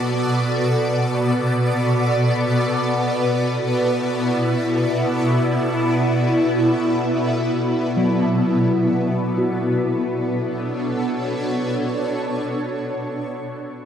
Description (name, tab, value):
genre	ambient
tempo	free time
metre	none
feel	none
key	B minor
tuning	A4 = 440 Hz
part	shimmering ambient pad	sustained chords	0.0-13.3 s	B2 to D5	-18 LUFS	equal	chorus, built-in reverb, phaser
part	handpan	arpeggios	8.0-12.8 s	F#3 to F#4	-26 LUFS	equal	tape echo
room	wet cathedral reverb, RT60 4.9 s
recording	dark, warm production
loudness	-18 LUFS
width	side -8 dB against mid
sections	0.0-9.4 A section; 9.4-13.0 B section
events	none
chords	0.0 D/B; 9.4 Bm9